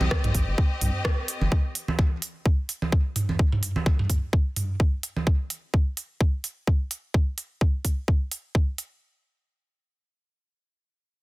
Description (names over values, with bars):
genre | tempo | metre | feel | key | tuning
minimal techno | 128 BPM | 4/4 | swing 56% on 16ths | C minor | A4 = 436 Hz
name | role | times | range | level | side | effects
rubbery square bass | bass | 0.0-1.5 s | G1 to C2 | -25 LUFS | equal | sidechain pumping
electronic congas and toms | percussion | 0.0-5.2 s | none | -28 LUFS | right 2 dB | digital delay
clear studio string section | texture | 0.0-1.5 s | C4 to Eb5 | -33 LUFS | left 2 dB | sidechain pumping
electronic kick drum | drums | 0.1-8.7 s | none | -22 LUFS | equal | none
minimal click drum kit | drums | 0.1-8.9 s | hi-hat, rim click | -30 LUFS | right 2 dB | overdrive
room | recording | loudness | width
little or no reverb | dense, heavily limited modern master | -23 LUFS | side -20 dB against mid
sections
0.0-9.0 A section; 9.0-11.2 B section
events
none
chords
0.0 Cm; 9.0 N.C.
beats
0.11 0.58 1.05 | 1.52 1.99 2.46 2.92 | 3.39 3.86 4.33 4.80 | 5.27 5.74 6.21 6.67 | 7.14 7.61 8.08 8.55